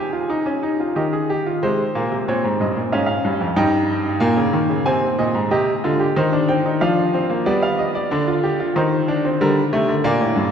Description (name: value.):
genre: classical, baroque-style 3-part fugue for grand piano.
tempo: 92 BPM.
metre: 3/4.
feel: straight.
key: Ab major, C minor from 5.5 s.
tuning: A4 = 440 Hz.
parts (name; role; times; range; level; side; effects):
clear baby grand piano; solo; 0.0-10.5 s; F2 to Ab5; -17 LUFS; equal; none.
room: wet cathedral reverb, RT60 4.8 s.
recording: recorded in a church or concert hall.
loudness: -17 LUFS.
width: side -7 dB against mid.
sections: 0.0-1.6 A section; 1.6-5.5 B section; 5.5-10.5 C section.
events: none.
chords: 0.0 Ab/C; 1.0 Eb; 1.6 Ab; 2.9 Db/Ab; 3.6 Eb7/G; 4.9 Ab/C; 5.5 Cm; 6.8 F5; 7.5 G7; 8.8 Cm/Eb; 9.4 Gm.